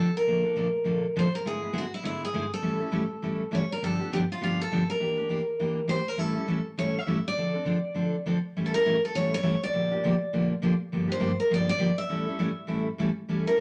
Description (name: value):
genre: jazz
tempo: 203 BPM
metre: 4/4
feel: swing 59% on 8ths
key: unclear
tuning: A4 = 439 Hz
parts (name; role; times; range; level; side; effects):
- picked steel-string acoustic guitar; melody; 0.0-13.6 s; E4 to E5; -31 LUFS; equal; none
- picked steel-string acoustic guitar; accompaniment; 0.0-13.6 s; G2 to A4; -30 LUFS; equal; none
room: wet studio reverb, RT60 0.6 s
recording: none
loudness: -28 LUFS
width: mono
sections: 0.0-8.5 A section; 8.5-13.6 B section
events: none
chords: 0.3 Bbmaj7; 1.4 E7/G#; 2.6 A7; 3.8 G7; 5.0 Em7b5; 6.2 A7; 7.4 Dm7; 8.5 A7; 9.7 Bb6; 10.9 Gm7; 12.1 A7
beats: | 0.26 0.56 0.85 1.15 | 1.44 1.74 2.04 2.33 | 2.63 2.92 3.22 3.52 | 3.81 4.11 4.40 4.70 | 5.00 5.29 5.59 5.88 | 6.18 6.48 6.77 7.07 | 7.37 7.66 7.96 8.25 | 8.55 8.84 9.14 9.43 | 9.73 10.02 10.32 10.61 | 10.91 11.20 11.50 11.79 | 12.09 12.38 12.68 12.97 | 13.26 13.56